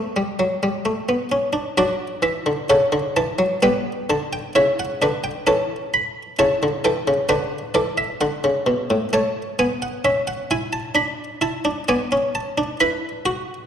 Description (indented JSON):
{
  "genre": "classical, baroque-style 4-part fugue for harpsichord",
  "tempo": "66 BPM",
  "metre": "4/4",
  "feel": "straight",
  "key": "D major",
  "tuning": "A4 = 440 Hz",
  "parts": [
    { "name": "buff-stop harpsichord", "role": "solo", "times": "0.0-13.7 s", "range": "A2 to B5", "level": "-19 LUFS", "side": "equal", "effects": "none" }
  ],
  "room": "moderate concert hall reverb, RT60 1.9 s",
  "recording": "dark, warm production",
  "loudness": "-19 LUFS",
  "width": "side -8 dB against mid",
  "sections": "0.0-1.8 A section; 1.8-13.7 B section",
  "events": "none",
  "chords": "0.0 D; 3.6 G; 5.5 A7/E; 7.3 D; 9.1 A; 11.0 D5; 12.8 E5",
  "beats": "0.86 | 1.79 2.71 3.63 4.56 | 5.47 6.39 7.30 8.22 | 9.13 10.04 10.96 11.87 | 12.79"
}